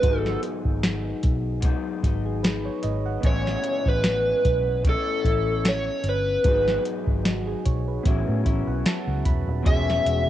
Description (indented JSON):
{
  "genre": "indie pop, bedroom pop",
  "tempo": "75 BPM",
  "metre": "4/4",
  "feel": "swing 55% on 16ths",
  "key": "A lydian",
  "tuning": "A4 = 440 Hz",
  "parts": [
    { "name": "overdriven slide guitar", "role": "melody", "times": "0.0-10.3 s", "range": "A4 to E5", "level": "-24 LUFS", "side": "equal", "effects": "analog chorus, cassette tape, analog delay" },
    { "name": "electric guitar through a small old amp", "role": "accompaniment", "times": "0.0-10.3 s", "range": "G#2 to F#4", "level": "-31 LUFS", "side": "left 9 dB", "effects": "lush chorus, vibrato effect, cassette tape" },
    { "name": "soft electric-piano-like synth keys", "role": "accompaniment", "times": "0.0-10.3 s", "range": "B3 to B5", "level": "-33 LUFS", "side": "right 8 dB", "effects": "chorus, cassette tape" },
    { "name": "vintage muted fingered electric bass", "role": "bass", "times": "0.0-10.3 s", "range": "D#1 to A2", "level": "-27 LUFS", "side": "equal", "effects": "none" },
    { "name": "soft vintage rhythm box", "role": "drums", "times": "0.0-10.3 s", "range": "hi-hat, kick drum, snare drum", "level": "-23 LUFS", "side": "equal", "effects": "overdrive, cassette tape" }
  ],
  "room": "light reverb, digital ambience",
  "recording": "home recording on cassette",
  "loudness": "-21 LUFS",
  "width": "side -12 dB against mid",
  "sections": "0.0-9.7 A section",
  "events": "synth keys fill 8.1-9.7",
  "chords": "0.0 G#m7; 3.2 Amaj7; 6.4 G#m7; 8.1 A6; 9.7 E69"
}